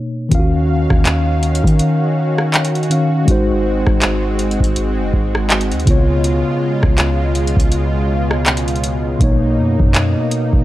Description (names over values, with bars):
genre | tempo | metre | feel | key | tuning
contemporary R&B | 81 BPM | 4/4 | swing 58% on 16ths | Eb minor | A4 = 437 Hz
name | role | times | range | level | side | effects
mellow tine electric piano | accompaniment | 0.0-10.6 s | B2 to F5 | -18 LUFS | left 1 dB | medium stereo tremolo
lush unison pad | sustained chords | 0.3-10.6 s | Cb3 to F5 | -22 LUFS | right 1 dB | chorus, sidechain pumping
warm 808-style bass | bass | 0.3-10.6 s | Gb1 to Eb3 | -19 LUFS | equal | none
booming analog drum machine | drums | 0.3-10.6 s | handclaps, hi-hat, kick drum, rim click | -16 LUFS | equal | none
room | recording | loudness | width
digital ambience | dry, gritty hardware recording, cassette tape | -13 LUFS | side -15 dB against mid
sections
0.0-10.6 A section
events
none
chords
0.3 Ebm9; 3.3 Ab7; 5.9 Db7; 9.2 Bmaj9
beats
| 0.32 1.05 1.80 2.54 | 3.28 4.02 4.76 5.50 | 6.24 6.98 7.72 8.46 | 9.20 9.94